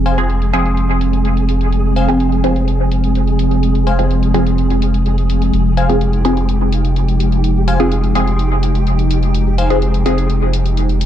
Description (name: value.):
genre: dub techno.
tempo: 126 BPM.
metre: 4/4.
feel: straight.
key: F minor.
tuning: A4 = 440 Hz.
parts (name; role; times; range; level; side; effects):
airy breathy pad; sustained chords; 0.0-11.1 s; C3 to Eb4; -18 LUFS; right 1 dB; chorus.
soft dub sub bass; bass; 0.0-11.1 s; F1; -16 LUFS; equal; none.
flickering grainy texture; texture; 0.0-11.1 s; Ab3 to Ab4; -26 LUFS; right 1 dB; built-in reverb.
wavetable chord stab; riff; 0.1-9.8 s; C5 to Ab5; -25 LUFS; left 4 dB; dub echo.
electronic hi-hat; drums; 0.1-11.1 s; none; -32 LUFS; left 2 dB; low-pass filter on hats, low-pass filter on room.
filtered dub chord stab; stabs; 0.2-10.2 s; F3 to Ab4; -19 LUFS; equal; phaser, dub echo.
room: light reverb, digital ambience.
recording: dark, warm production.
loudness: -12 LUFS.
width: side -10 dB against mid.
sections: 0.0-11.1 A section.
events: filter sweep on analog synth pad 0.0-11.1.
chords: 0.0 Fm.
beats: 0.30 0.77 1.25 | 1.73 2.20 2.68 3.15 | 3.63 4.11 4.58 5.06 | 5.54 6.01 6.49 6.96 | 7.44 7.92 8.39 8.87 | 9.34 9.82 10.30 10.77.